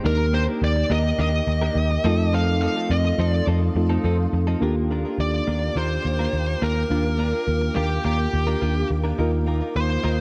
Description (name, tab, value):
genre	pop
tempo	105 BPM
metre	4/4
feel	straight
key	unclear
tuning	A4 = 440 Hz
part	mellow FM electric piano	accompaniment	0.0-10.2 s	A3 to Bb4	-29 LUFS	equal	chorus
part	granular cloud pad	sustained chords	0.5-10.2 s	A4 to Eb6	-39 LUFS	equal	built-in reverb
part	direct-recorded clean electric guitar	riff	0.0-10.2 s	F3 to Bb4	-33 LUFS	equal	analog chorus
part	vintage muted picked electric bass	bass	0.0-10.2 s	Eb2 to F2	-25 LUFS	equal	none
part	high-gain lead guitar	melody	0.1-10.2 s	G4 to F5	-29 LUFS	equal	distortion, digital delay
room	light reverb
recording	dark, warm production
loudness	-22 LUFS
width	mono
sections	0.0-4.6 A section; 4.6-10.2 B section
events	none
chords	0.1 Ebmaj7; 2.1 F7; 4.6 Gm7/Eb; 9.2 Ebsus2